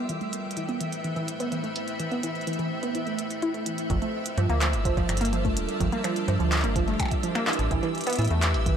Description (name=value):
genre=IDM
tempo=126 BPM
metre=4/4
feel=straight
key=unclear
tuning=A4 = 437 Hz
part: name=icy glass pad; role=sustained chords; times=0.0-8.8 s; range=G3 to G5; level=-32 LUFS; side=equal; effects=chorus, built-in reverb
part: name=flickering grainy texture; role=texture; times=0.0-8.8 s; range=E5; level=-37 LUFS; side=right 1 dB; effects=built-in reverb
part: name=warbly dusty pluck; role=arpeggios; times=0.1-8.7 s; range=E3 to E4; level=-29 LUFS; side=right 2 dB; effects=analog chorus, tape echo
part: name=glitchy drum kit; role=drums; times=0.1-8.8 s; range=finger snaps, handclaps, hi-hat, percussion blips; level=-31 LUFS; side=equal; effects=overdrive
part: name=metallic FM bass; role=bass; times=3.9-8.8 s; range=D1 to A2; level=-26 LUFS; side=equal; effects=none
part: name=electronic kick drum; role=drums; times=3.9-8.8 s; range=none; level=-28 LUFS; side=equal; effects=none
room=light reverb, digital ambience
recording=none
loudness=-24 LUFS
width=side -8 dB against mid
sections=0.0-3.9 A section; 3.9-8.8 B section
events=filter sweep on synth pluck 0.0-3.9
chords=0.0 Am9; 3.9 Gm9; 7.5 Am9